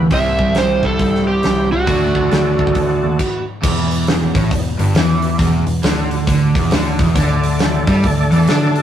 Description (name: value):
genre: blues rock power trio and southern rock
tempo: 136 BPM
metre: 4/4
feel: swing 63% on 8ths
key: unclear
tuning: A4 = 439 Hz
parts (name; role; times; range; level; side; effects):
- overdriven tonewheel organ; sustained chords; 0.0-3.2, 7.2-8.8 s; A3 to D5; -24 LUFS; right 1 dB; slow rotary speaker, chorus vibrato
- overdriven semi-hollow guitar; riff; 0.0-8.8 s; E2 to D4; -18 LUFS; equal; none
- vintage muted picked electric bass; bass; 0.0-8.8 s; E1 to D3; -18 LUFS; equal; none
- overdriven slide guitar; melody; 0.1-3.4 s; F#4 to E5; -18 LUFS; right 2 dB; none
- lightly driven lead guitar; second line; 0.1-3.4 s; C4 to C5; -33 LUFS; right 1 dB; none
- big rock drum kit; drums; 0.1-8.8 s; crash cymbal, hi-hat, kick drum, snare drum; -19 LUFS; equal; none
room: light reverb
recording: rough rehearsal-room recording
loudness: -13 LUFS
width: side -10 dB against mid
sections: 0.0-3.6 A section; 3.6-8.8 B section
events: stop 3.2-3.6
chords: 0.1 C; 1.9 D; 3.6 N.C.; 7.2 D5